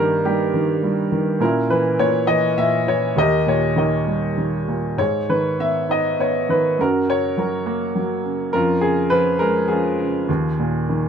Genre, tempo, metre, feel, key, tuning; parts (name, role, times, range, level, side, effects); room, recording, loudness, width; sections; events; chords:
classical, lyrical solo piano; 102 BPM; 3/4; rubato; A4 = 442 Hz
clear baby grand piano; solo; 0.0-11.1 s; D#2 to E5; -17 LUFS; equal
moderate studio reverb, RT60 0.6 s; close, detailed microphones; -17 LUFS; side -7 dB against mid
0.0-11.1 A section
grand piano fill 10.9
0.0 D#/G; 1.4 A#dim; 3.2 D#; 5.0 G#m; 6.8 F#; 8.5 C#/E#; 10.3 D#sus4